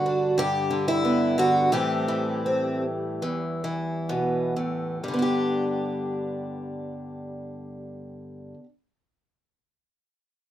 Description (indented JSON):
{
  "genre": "folk, solo fingerstyle acoustic guitar",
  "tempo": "63-94 BPM",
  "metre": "4/4",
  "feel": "rubato",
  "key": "G major",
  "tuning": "A4 = 440 Hz",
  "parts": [
    { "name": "picked twelve-string acoustic guitar", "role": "solo", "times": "0.0-8.7 s", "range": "E2 to G4", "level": "-24 LUFS", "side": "equal", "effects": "none" }
  ],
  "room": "light reverb",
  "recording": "minimal, uncompressed stereo recording",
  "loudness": "-23 LUFS",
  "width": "side -12 dB against mid",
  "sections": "0.0-5.0 A section; 5.0-8.8 B section",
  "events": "slowing down 0.0-5.0",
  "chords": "0.0 G; 1.7 Am7; 5.0 G"
}